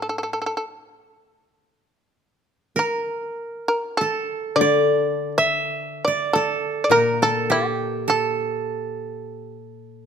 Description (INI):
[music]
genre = japanese traditional, Japanese chamber music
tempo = 45-52 BPM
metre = 4/4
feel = rubato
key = A in sen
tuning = A4 = 440 Hz
[part]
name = shamisen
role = melody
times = 0.0-10.1 s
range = G4 to E5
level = -22 LUFS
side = equal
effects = none
[part]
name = koto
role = second line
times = 0.0-10.1 s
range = G4 to E5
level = -23 LUFS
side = right 5 dB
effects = none
[part]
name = koto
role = accompaniment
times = 0.0-10.1 s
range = A2 to D3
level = -26 LUFS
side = left 9 dB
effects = none
[sound]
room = light reverb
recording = close, detailed microphones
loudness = -20 LUFS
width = side -7 dB against mid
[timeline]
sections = 0.0-2.2 A section; 2.2-10.1 B section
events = none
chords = none